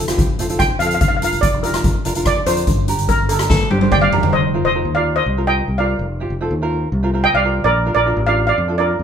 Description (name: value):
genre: calypso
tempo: 145 BPM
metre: 4/4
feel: straight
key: unclear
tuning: A4 = 440 Hz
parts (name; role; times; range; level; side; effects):
- tenor ukulele; accompaniment; 0.0-9.0 s; C4 to C5; -24 LUFS; right 1 dB; none
- overdriven fingered electric bass; bass; 0.0-9.0 s; F1 to F2; -21 LUFS; equal; none
- street-band drum kit; drums; 0.1-4.3 s; hi-hat, kick drum, rim click, snare drum, toms; -18 LUFS; left 1 dB; none
- steel pan; melody; 0.6-9.0 s; A4 to G5; -18 LUFS; right 2 dB; none
- bright alto saxophone; second line; 3.5-4.3 s; G4 to A4; -23 LUFS; left 4 dB; none
room: wet large studio reverb, RT60 0.9 s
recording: band playing live in one room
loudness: -14 LUFS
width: side -8 dB against mid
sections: 0.0-4.3 A section; 4.3-9.0 B section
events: steel pan solo 0.0-4.3; drum fill 3.5-4.3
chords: 0.0 F; 1.0 Bb/F; 2.7 Gm; 4.3 F7sus4; 7.6 Bbmaj7